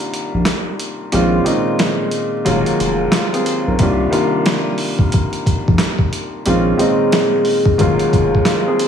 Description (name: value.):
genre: hip hop, boom-bap hip-hop.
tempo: 90 BPM.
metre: 4/4.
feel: swing 62% on 16ths.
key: C phrygian.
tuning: A4 = 437 Hz.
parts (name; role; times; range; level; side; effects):
warm upright piano; accompaniment; 0.0-8.9 s; C2 to Bb4; -16 LUFS; equal; cassette tape, high-pass filter, low-pass filter.
boom bap sampler-style drum kit; drums; 0.0-8.9 s; hi-hat, kick drum, snare drum; -18 LUFS; equal; none.
saturated sub bass; bass; 0.3-8.4 s; Eb1 to C2; -19 LUFS; left 1 dB; none.
room: light reverb, digital ambience.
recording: vinyl crackle, studio reverb.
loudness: -14 LUFS.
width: side -8 dB against mid.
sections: 0.0-8.9 A section.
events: break 0.0-3.8.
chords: 0.0 Cm11; 1.1 Bbm11; 2.5 Ebm11; 3.8 Cm11; 6.5 Bbm11; 7.8 Ebm11.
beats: 0.46 | 1.13 1.79 2.46 3.13 | 3.79 4.46 5.13 5.79 | 6.46 7.13 7.79 8.46.